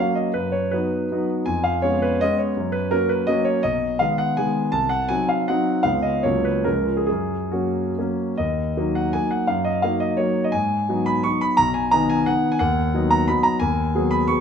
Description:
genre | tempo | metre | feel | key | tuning
classical, romantic triple-time dance for piano with dotted rhythms | 126-191 BPM | 3/4 | rubato | F# major, Eb minor from 8.4 s | A4 = 439 Hz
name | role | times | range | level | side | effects
warm concert grand piano | solo | 0.0-14.4 s | B1 to Db6 | -19 LUFS | equal | none
room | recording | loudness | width
moderate recital hall reverb, RT60 1.4 s | close, detailed microphones | -19 LUFS | side -7 dB against mid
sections
0.0-8.4 A section; 8.4-14.4 B section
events
none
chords
0.4 B/F#; 1.5 C#7/E#; 2.6 F#; 3.6 G#m/B; 4.7 Cdim; 5.9 C#7; 6.2 F#/C#; 6.7 C#; 7.1 F#; 8.4 Ebm; 9.5 Ebm/Gb; 10.5 Abm7; 11.6 B6; 12.6 B/D#; 13.6 G#m7/D#

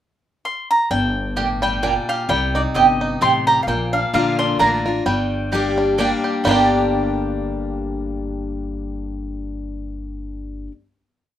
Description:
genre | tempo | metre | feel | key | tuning
bluegrass | 130 BPM | 3/4 | swing 55% on 8ths | G minor | A4 = 440 Hz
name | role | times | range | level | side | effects
mandolin | melody | 0.5-10.7 s | D5 to C6 | -20 LUFS | equal | none
picked steel-string acoustic guitar | accompaniment | 0.9-10.7 s | G2 to G4 | -23 LUFS | left 4 dB | none
bluegrass banjo | arpeggios | 0.9-10.7 s | G3 to G4 | -25 LUFS | right 2 dB | none
upright bass | bass | 0.9-10.7 s | G1 to C2 | -25 LUFS | equal | none
mandolin | stabs | 1.4-10.7 s | Bb3 to Bb5 | -19 LUFS | right 6 dB | none
room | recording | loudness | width
moderate studio reverb, RT60 0.5 s | rough home demo mix | -17 LUFS | side -11 dB against mid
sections
0.0-0.9 pickup bar; 0.9-6.5 A section; 6.5-9.2 final chord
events
none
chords
0.0 N.C.; 0.9 Gm; 2.3 Cm; 3.7 Bb; 5.1 Gm

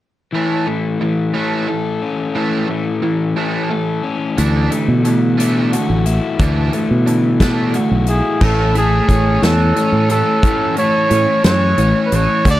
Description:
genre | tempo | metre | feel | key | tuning
indie rock | 59 BPM (dotted quarters) | 6/8 | straight | A major | A4 = 436 Hz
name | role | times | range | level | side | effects
biting overdriven guitar | riff | 0.3-12.6 s | A2 to D4 | -20 LUFS | right 4 dB | analog chorus, slapback echo
crunchy overdriven guitar | riff | 0.3-12.6 s | E3 to A4 | -19 LUFS | left 5 dB | none
fingered electric bass | bass | 4.4-12.6 s | A1 to B2 | -15 LUFS | equal | none
big rock drum kit | drums | 4.4-12.6 s | crash cymbal, hi-hat, kick drum, snare drum | -19 LUFS | equal | none
warm trumpet | melody | 8.1-12.6 s | G#4 to D5 | -17 LUFS | right 1 dB | slapback echo
room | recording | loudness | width
little or no reverb | dry, close 1970s-style studio recording | -13 LUFS | side -14 dB against mid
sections
0.3-8.4 A section; 8.4-12.6 B section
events
none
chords
0.3 A; 4.4 Dadd9; 8.4 A

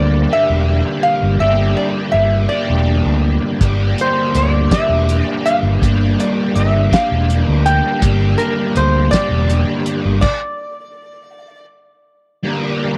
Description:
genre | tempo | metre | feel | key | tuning
psychedelic rock | 54 BPM (dotted quarters) | 6/8 | straight | G dorian | A4 = 440 Hz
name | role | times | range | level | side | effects
metal-body resonator slide guitar | melody | 0.0-11.7 s | Bb4 to G5 | -21 LUFS | equal | slapback echo
bright tonewheel organ | sustained chords | 0.0-13.0 s | G3 to G4 | -31 LUFS | equal | none
overdriven electric guitar | riff | 0.0-13.0 s | G2 to Bb4 | -21 LUFS | equal | rotary speaker
overdriven fingered electric bass | bass | 0.0-10.2 s | E1 to D2 | -18 LUFS | equal | none
cloth-damped thuddy drum kit | drums | 3.6-10.4 s | crash cymbal, hi-hat, kick drum, snare drum | -19 LUFS | equal | none
room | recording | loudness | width
light reverb, small room ambience | none | -15 LUFS | mono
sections
0.0-12.4 A section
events
stop 10.2-12.4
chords
0.0 Gm

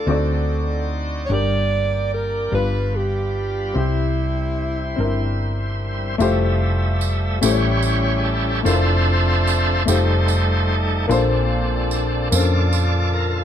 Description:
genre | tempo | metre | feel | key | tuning
slow gospel | 49 BPM (dotted quarters) | 6/8 | straight | F major | A4 = 440 Hz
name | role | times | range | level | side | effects
breathy alto saxophone | melody | 0.0-5.4 s | E4 to D5 | -25 LUFS | right 2 dB | none
warm upright piano | accompaniment | 0.0-13.4 s | G2 to D5 | -24 LUFS | left 4 dB | none
bright tonewheel organ | sustained chords | 0.0-13.4 s | F3 to E5 | -24 LUFS | right 1 dB | slow rotary speaker, overdrive
hollow-body short-scale fingered electric bass | bass | 0.0-13.4 s | F1 to F2 | -20 LUFS | equal | none
tambourine | percussion | 6.2-13.1 s | none | -29 LUFS | right 6 dB | none
room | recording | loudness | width
light reverb | dark, warm production | -17 LUFS | side -9 dB against mid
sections
0.0-6.2 A section; 6.2-13.4 B section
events
tonewheel organ solo 6.2-13.4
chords
0.1 D7b9; 1.3 Gm; 2.5 G7; 3.8 C; 6.2 Fmaj9; 7.4 A7; 8.6 Dm9/F; 9.9 F9; 11.1 Bbmaj9

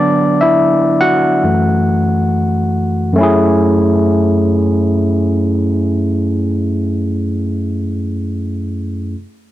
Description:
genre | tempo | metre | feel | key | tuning
R&B | 69 BPM | 4/4 | swing 64% on 16ths | F# minor | A4 = 439 Hz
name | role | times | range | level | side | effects
overdriven tine electric piano | solo | 0.0-9.2 s | F#2 to F#5 | -12 LUFS | equal | none
room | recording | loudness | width
light reverb | none | -12 LUFS | side -14 dB against mid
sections
0.0-3.2 A section; 3.2-6.6 B section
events
tine electric piano solo 0.0-3.2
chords
0.0 D69; 1.4 F#m7; 3.2 F#m9

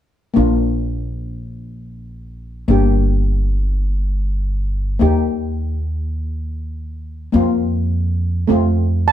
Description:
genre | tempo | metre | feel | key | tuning
calypso | 103 BPM | 4/4 | straight | Bb major | A4 = 439 Hz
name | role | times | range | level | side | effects
steel pan | accompaniment | 0.3-9.1 s | A3 to G4 | -18 LUFS | left 2 dB | none
upright bass | bass | 0.4-9.1 s | G1 to F2 | -19 LUFS | equal | none
steel pan | melody | 9.1 s | A5 | -10 LUFS | right 12 dB | none
room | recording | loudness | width
moderate studio reverb, RT60 0.7 s | band playing live in one room | -16 LUFS | side -11 dB against mid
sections
0.4-9.1 A section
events
none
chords
0.4 Bb; 2.7 Gm; 5.0 Eb; 7.3 Fsus4; 8.5 F

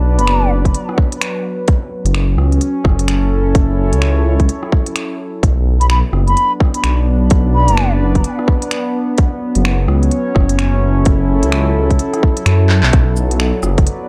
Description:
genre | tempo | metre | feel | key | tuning
future garage | 128 BPM | 4/4 | swing 61% on 16ths | F# minor | A4 = 439 Hz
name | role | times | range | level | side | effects
warbly tape-like pad | sustained chords | 0.0-14.1 s | F#3 to D5 | -22 LUFS | equal | chorus, built-in reverb, vintage 12-bit sampler grit, sidechain pumping
dark detuned saw bass | bass | 0.0-13.9 s | F#1 to F#2 | -16 LUFS | equal | tube saturation, sidechain pumping
mellow hollow silver concert flute | melody | 0.2-0.5, 5.8-7.9 s | B5 | -21 LUFS | equal | tape echo
organic electronic drum kit | drums | 0.2-14.0 s | cabasa, finger snaps, handclaps, hi-hat, rim click | -25 LUFS | equal | overdrive
electronic kick drum | drums | 0.7-13.8 s | none | -15 LUFS | equal | overdrive
room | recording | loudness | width
little or no reverb | dry, gritty hardware recording | -14 LUFS | mono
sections
0.0-12.9 A section; 12.9-14.1 B section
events
drum fill 12.7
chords
0.0 Bm; 1.7 F#m7; 5.4 Bm; 9.2 F#m7; 12.9 Bm

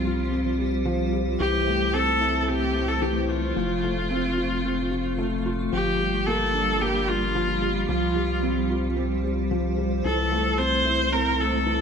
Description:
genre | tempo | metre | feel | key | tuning
piano and strings electronica | 111 BPM | 4/4 | straight | unclear | A4 = 440 Hz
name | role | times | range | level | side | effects
rich viola | melody | 0.0-11.8 s | F4 to C5 | -25 LUFS | equal | digital delay
granular cloud pad | sustained chords | 0.0-11.8 s | G3 to C5 | -30 LUFS | right 2 dB | built-in reverb
felt-muted upright piano | riff | 0.0-11.8 s | E3 to F4 | -27 LUFS | left 2 dB | digital delay
round analog bass | bass | 0.0-11.8 s | F1 to C2 | -29 LUFS | right 1 dB | none
room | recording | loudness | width
moderate lush hall reverb, RT60 1.8 s, small room reverb | none | -22 LUFS | side -6 dB against mid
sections
0.0-11.8 A section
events
none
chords
0.0 Csus4; 1.4 Am/C; 3.6 F; 5.7 Gm7; 7.9 Csus4; 10.0 Am/C

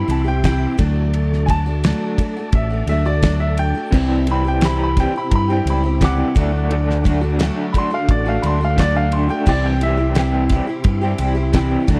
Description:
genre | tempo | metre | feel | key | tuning
folk rock and heartland rock | 86 BPM | 4/4 | straight | unclear | A4 = 440 Hz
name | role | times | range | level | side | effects
bright grand piano | melody | 0.0-11.9 s | D5 to D6 | -27 LUFS | equal | none
picked twelve-string acoustic guitar | accompaniment | 0.0-12.0 s | C3 to G4 | -25 LUFS | equal | none
tonewheel organ | sustained chords | 0.0-12.0 s | F#4 to D6 | -37 LUFS | equal | none
fingered electric bass | bass | 0.0-12.0 s | A1 to G2 | -22 LUFS | equal | none
damped 70s drum kit | drums | 0.1-12.0 s | crash cymbal, kick drum, ride cymbal, snare drum | -21 LUFS | equal | none
electric guitar through a small old amp | riff | 3.9-12.0 s | C3 to G4 | -26 LUFS | equal | tremolo
room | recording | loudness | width
studio ambience | dry, close 1970s-style studio recording | -18 LUFS | mono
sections
0.0-12.0 A section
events
grand piano solo 0.0-12.0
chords
0.0 C; 0.8 D; 3.9 C; 6.4 D; 9.5 C

